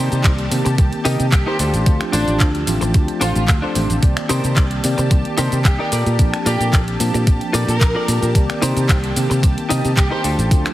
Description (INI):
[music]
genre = nu-disco, nu disco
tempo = 111 BPM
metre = 4/4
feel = straight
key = C dorian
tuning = A4 = 442 Hz
[part]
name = tine electric piano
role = accompaniment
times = 0.0-10.7 s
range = Eb3 to A5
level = -24 LUFS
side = equal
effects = medium stereo tremolo, tape echo
[part]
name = lush unison pad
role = sustained chords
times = 0.0-10.7 s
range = G4 to A5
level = -28 LUFS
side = equal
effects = chorus, phaser, sidechain pumping
[part]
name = direct-recorded clean electric guitar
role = riff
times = 0.0-10.7 s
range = D4 to Eb5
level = -24 LUFS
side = left 2 dB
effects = wide subtle chorus
[part]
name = fingered electric bass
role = bass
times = 0.0-10.6 s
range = A1 to C3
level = -20 LUFS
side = equal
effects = sidechain pumping
[part]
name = pop drum kit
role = drums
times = 0.1-10.7 s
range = finger snaps, handclaps, hi-hat, shaker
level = -24 LUFS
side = equal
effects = studio ambience
[part]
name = electronic kick drum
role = drums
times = 0.2-10.6 s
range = none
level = -14 LUFS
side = equal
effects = overdrive, studio ambience
[part]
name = warm studio violin section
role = melody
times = 1.3-10.2 s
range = D4 to Bb4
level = -26 LUFS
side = equal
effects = tape echo
[sound]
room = light reverb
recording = heavily compressed radio sound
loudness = -14 LUFS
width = side -15 dB against mid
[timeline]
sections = 0.0-10.7 A section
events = none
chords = 0.0 Cm7; 1.6 Dm7; 4.0 Cm7; 5.9 Bbmaj7; 8.4 Cm7